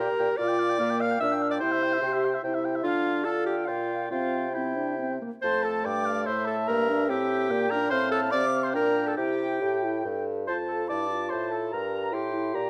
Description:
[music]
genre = quick classical-period movement for wind quintet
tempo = 144 BPM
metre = 3/4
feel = rubato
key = F major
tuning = A4 = 440 Hz
[part]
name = silver concert flute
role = melody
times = 0.0-12.7 s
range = E5 to F6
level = -36 LUFS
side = equal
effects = none
[part]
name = warm oboe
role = second line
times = 0.0-12.7 s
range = E5 to C6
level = -36 LUFS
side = equal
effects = none
[part]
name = clear clarinet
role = accompaniment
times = 0.0-12.7 s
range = E4 to F5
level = -32 LUFS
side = equal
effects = none
[part]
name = warm French horn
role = accompaniment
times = 0.0-12.7 s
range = A3 to A4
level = -33 LUFS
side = equal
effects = none
[part]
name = warm bassoon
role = bass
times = 0.0-12.7 s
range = F2 to D3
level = -34 LUFS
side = equal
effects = none
[sound]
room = moderate recital hall reverb, RT60 1.6 s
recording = close, detailed microphones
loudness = -27 LUFS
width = mono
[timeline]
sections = 0.0-5.4 A section; 5.4-12.7 B section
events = none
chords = 0.4 Gm7/Bb; 1.6 C; 2.8 Dm; 3.7 Gm7/Bb; 4.1 C; 5.4 F; 6.7 Edim/G; 7.9 F/A; 8.7 Gm/Bb; 9.2 C; 10.5 F; 11.7 Edim/G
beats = | 0.39 0.80 1.21 | 1.61 2.02 2.43 | 2.83 3.25 3.67 | 4.11 4.55 4.99 | 5.42 5.84 6.26 | 6.68 7.09 7.50 | 7.91 8.32 8.74 | 9.17 9.61 10.05 | 10.48 10.90 11.31 | 11.72 12.13 12.54

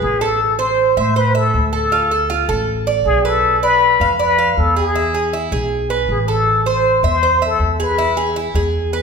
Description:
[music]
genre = latin, Cuban son and guajira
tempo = 158 BPM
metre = 4/4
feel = straight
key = A harmonic minor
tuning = A4 = 437 Hz
[part]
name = trumpet with plunger mute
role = melody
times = 0.0-8.3 s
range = G#4 to C5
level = -16 LUFS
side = left 4 dB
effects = none
[part]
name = Cuban tres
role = arpeggios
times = 0.0-9.0 s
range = E4 to F5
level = -18 LUFS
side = right 5 dB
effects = none
[part]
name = upright bass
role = bass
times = 0.0-9.0 s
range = A1 to A2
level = -21 LUFS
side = equal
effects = none
[sound]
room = wet recital hall reverb, RT60 1.5 s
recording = recorded in a church or concert hall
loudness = -14 LUFS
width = side -5 dB against mid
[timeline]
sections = 0.4-9.0 A section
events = none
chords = 0.4 Am; 1.9 Dm; 3.4 Bdim; 5.0 E; 6.5 Am; 8.0 E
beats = 0.02 | 0.40 0.78 1.16 1.54 | 1.92 2.30 2.68 3.06 | 3.44 3.82 4.20 4.58 | 4.96 5.33 5.71 6.09 | 6.47 6.85 7.23 7.61 | 7.99 8.36 8.74

